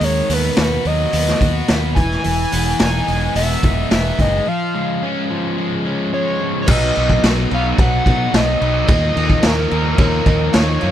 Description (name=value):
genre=indie rock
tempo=108 BPM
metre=4/4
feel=straight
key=unclear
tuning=A4 = 437 Hz
part: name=overdriven synth lead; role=melody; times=0.0-10.9 s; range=A#4 to G#5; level=-21 LUFS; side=equal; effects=none
part: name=distorted electric guitar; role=riff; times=0.0-10.9 s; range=B2 to F#4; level=-20 LUFS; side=left 1 dB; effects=distortion
part: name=growling fingered electric bass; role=bass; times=0.0-10.9 s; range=E1 to B2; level=-20 LUFS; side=equal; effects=overdrive
part: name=raw garage drum kit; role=drums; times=0.0-10.9 s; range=crash cymbal, hi-hat, kick drum, snare drum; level=-18 LUFS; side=equal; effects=none
part: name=glassy synth bell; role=second line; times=6.7-10.9 s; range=B4 to E#5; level=-32 LUFS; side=right 1 dB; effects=none
part: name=tonewheel organ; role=sustained chords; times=6.7-10.9 s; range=E#3 to D#5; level=-31 LUFS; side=right 2 dB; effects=none
room=light reverb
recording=none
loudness=-14 LUFS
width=side -11 dB against mid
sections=0.0-6.7 A section; 6.7-10.9 B section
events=break 4.5-6.7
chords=0.0 B/D#; 2.0 Emaj7; 4.5 C#/E#; 6.7 B; 8.9 D#sus2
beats=| 0.01 0.57 1.13 1.69 | 2.24 2.80 3.36 3.91 | 4.47 5.02 5.58 6.13 | 6.68 7.23 7.79 8.34 | 8.89 9.44 9.99 10.54